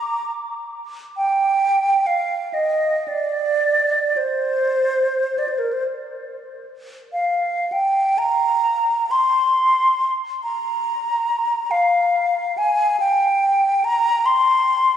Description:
classical, free, expressive piece for unaccompanied flute; 26-48 BPM (dotted quarters); 6/8; rubato; C minor; A4 = 439 Hz
concert flute; solo; 0.0-15.0 s; Bb4 to C6; -17 LUFS; equal
wet cathedral reverb, RT60 4.2 s; recorded on a phone in the room, studio reverb; -17 LUFS; side -9 dB against mid
0.0-7.7 A section; 7.7-15.0 B section
| 1.17 2.56 | 4.17 5.82 | 7.72 9.10 | 10.42 11.70 | 13.00 14.28

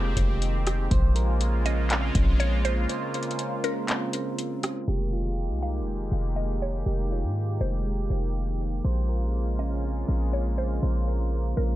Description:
hip hop, atmospheric cloud-rap; 121 BPM; 4/4; half-time; Bb dorian; A4 = 440 Hz
mallet-like synth pluck; melody; 0.0-11.8 s; Bb4 to F5; -35 LUFS; left 1 dB; chorus, low-pass filter, ping-pong delay
sweeping resonant pad; sustained chords; 0.0-11.8 s; Db3 to G4; -32 LUFS; equal; chorus, sidechain pumping
soft electric-piano-like synth keys; arpeggios; 0.0-11.8 s; Ab3 to C5; -36 LUFS; right 5 dB; chorus, low-pass filter, ping-pong delay
warm 808-style bass; bass; 0.0-11.8 s; F1 to Ab2; -25 LUFS; equal
booming analog drum machine; drums; 0.2-4.7 s; handclaps, hi-hat, kick drum, rim click; -26 LUFS; equal
little or no reverb; low-pass filter; -24 LUFS; side -15 dB against mid
0.0-4.9 A section; 4.9-11.8 B section
break 2.9-4.9; filter sweep 4.9-11.8
0.0 Fm11; 0.9 Bbm9; 4.9 Fm11; 8.8 Bbm9
0.42 | 0.91 1.41 1.90 2.40 | 2.90 3.39 3.89 4.38 | 4.88 5.37 5.87 6.37 | 6.86 7.36 7.85 8.35 | 8.85 9.34 9.84 10.33 | 10.83 11.32

